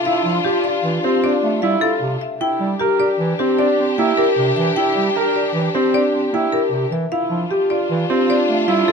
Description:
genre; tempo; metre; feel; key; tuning
classical, minimalist pattern music; 153 BPM; 6/4; straight; D minor; A4 = 439 Hz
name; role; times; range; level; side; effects
marimba with medium hard mallets; melody; 0.0-8.9 s; G4 to G5; -20 LUFS; left 8 dB; none
mellow French horn; second line; 0.0-8.9 s; F4 to G4; -25 LUFS; right 7 dB; none
rich studio string section; sustained chords; 0.0-8.9 s; D4 to G4; -24 LUFS; left 4 dB; none
dark baby grand piano; arpeggios; 0.1-8.9 s; C4 to Bb4; -21 LUFS; right 6 dB; none
mellow bass clarinet; accompaniment; 0.2-8.8 s; C3 to C4; -24 LUFS; right 2 dB; none
room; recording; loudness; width
light reverb; close, detailed microphones; -16 LUFS; side -5 dB against mid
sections
0.0-8.9 A section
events
none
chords
0.0 Dm9; 2.4 Em7b5; 7.1 Dm9

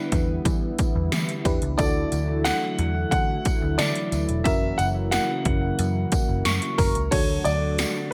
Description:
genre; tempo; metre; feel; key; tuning
1980s-style pop; 90 BPM; 4/4; straight; D major; A4 = 440 Hz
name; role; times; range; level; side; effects
warm grand piano; melody; 0.0-8.1 s; A#4 to F#5; -30 LUFS; equal; tape echo
FM electric piano; accompaniment; 0.0-8.1 s; C#4 to C#6; -32 LUFS; equal; chorus
brassy analog pad; sustained chords; 0.0-8.1 s; C#3 to F#4; -33 LUFS; equal; chorus
vintage muted picked electric bass; bass; 0.1-7.8 s; E1 to E3; -29 LUFS; equal; none
80s electronic pad drums; drums; 0.1-7.9 s; crash cymbal, hi-hat, kick drum, snare drum, tambourine; -28 LUFS; equal; gated reverb
tambourine; percussion; 0.1-7.9 s; none; -42 LUFS; equal; none
room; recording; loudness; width
light reverb; none; -23 LUFS; mono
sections
0.0-7.1 A section; 7.1-8.1 B section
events
FM electric piano fill 6.1-7.1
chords
0.0 Em7; 1.8 Dadd9; 4.5 F#7; 7.1 Dmaj7

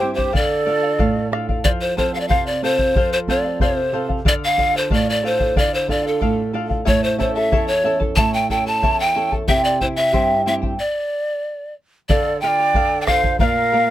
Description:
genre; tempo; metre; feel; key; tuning
andean folk, Andean ensemble; 92 BPM; 2/4; straight; D minor; A4 = 440 Hz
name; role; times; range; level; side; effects
breathy mellow pan flute; melody; 0.0-13.9 s; A4 to A5; -19 LUFS; equal; none
breathy bright large quena; second line; 0.0-1.3, 12.1-13.9 s; G4 to E5; -23 LUFS; right 4 dB; none
charango; accompaniment; 0.0-13.9 s; E4 to A5; -25 LUFS; left 2 dB; none
flamenco guitar; accompaniment; 0.0-13.9 s; E2 to A4; -25 LUFS; right 4 dB; none
bombo; percussion; 0.2-13.5 s; none; -21 LUFS; equal; none
room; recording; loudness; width
little or no reverb; close, detailed microphones; -16 LUFS; side -13 dB against mid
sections
0.0-1.6 A section; 1.6-12.1 A section; 12.1-13.9 B section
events
stop 10.8-12.1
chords
0.3 Dm; 1.6 F; 4.3 Dm; 6.9 A; 9.5 C; 10.8 N.C.; 12.1 Dm; 13.4 Bb

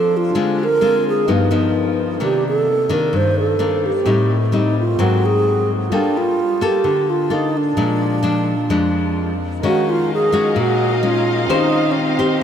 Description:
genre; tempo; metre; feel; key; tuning
bossa nova; 129 BPM; 4/4; straight; G minor; A4 = 440 Hz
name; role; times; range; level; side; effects
wooden-headed alto flute; melody; 0.0-12.4 s; C4 to C5; -18 LUFS; right 2 dB; none
nylon-string guitar; accompaniment; 0.0-12.4 s; F2 to C5; -18 LUFS; left 3 dB; none
warm baby grand piano; accompaniment; 0.0-12.4 s; Bb3 to G5; -28 LUFS; right 2 dB; none
warm studio violin section; sustained chords; 9.6-12.4 s; Eb4 to F5; -24 LUFS; left 2 dB; none
room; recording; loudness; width
wet huge ambient reverb, RT60 7.7 s; in a vast, echoing space; -15 LUFS; side -8 dB against mid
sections
0.0-9.6 A section; 9.6-12.4 B section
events
none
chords
0.3 Dm7b5; 1.3 Gaug7; 2.2 Cm9; 4.1 Am7b5; 5.0 Ab9; 5.9 Gm9; 7.8 Bb7; 9.6 Ebm11; 11.5 Eb13

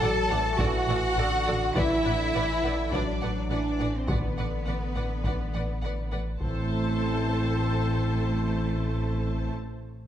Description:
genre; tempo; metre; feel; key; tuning
cinematic, hybrid orchestral and electronic film score; 103 BPM; 4/4; straight; A dorian; A4 = 440 Hz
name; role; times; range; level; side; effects
warm symphonic violin section; melody; 0.0-9.5 s; F#5 to A5; -41 LUFS; left 2 dB; none
warm symphonic violin section; second line; 0.0-9.5 s; B4 to A5; -34 LUFS; left 1 dB; none
rich symphonic viola section; accompaniment; 0.0-9.5 s; A4 to D5; -36 LUFS; equal; none
mellow French horn section; sustained chords; 0.0-9.5 s; D3 to E4; -34 LUFS; left 3 dB; none
rich symphonic cello section; bass; 0.0-9.5 s; A3 to A4; -31 LUFS; right 2 dB; none
rich symphonic double bass section; bass; 0.0-9.5 s; A1; -31 LUFS; right 2 dB; none
saturated sub bass; bass; 0.0-9.5 s; A1; -32 LUFS; equal; none
solo taiko drums; drums; 0.6-7.5 s; none; -32 LUFS; equal; none
room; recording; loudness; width
moderate scoring stage reverb, RT60 1.5 s; none; -25 LUFS; side -10 dB against mid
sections
0.0-6.4 A section; 6.4-8.7 B section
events
none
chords
0.0 D/A; 1.8 Bm/A; 6.4 Am

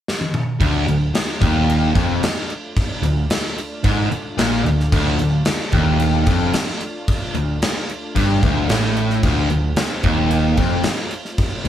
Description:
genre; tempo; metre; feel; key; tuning
hard rock; 111 BPM; 4/4; straight; D minor; A4 = 440 Hz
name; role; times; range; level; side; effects
gated 80s drum kit; drums; 0.1-11.7 s; crash cymbal, kick drum, snare drum, toms; -21 LUFS; equal; none
lush unison pad; sustained chords; 0.6-11.7 s; A3 to F4; -32 LUFS; equal; none
distorted electric guitar; riff; 0.6-11.7 s; D2 to Bb2; -21 LUFS; left 3 dB; overdrive
sludgy distorted guitar; riff; 0.6-11.7 s; D2 to Bb2; -22 LUFS; right 6 dB; overdrive
hollow-body short-scale picked electric bass; bass; 0.6-11.7 s; D1 to Bb1; -24 LUFS; equal; none
room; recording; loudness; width
wet large studio reverb, RT60 1.0 s; band playing live in one room; -16 LUFS; side -11 dB against mid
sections
0.6-11.7 A section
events
drum fill 0.1-0.6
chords
0.0 N.C.; 0.6 Dm

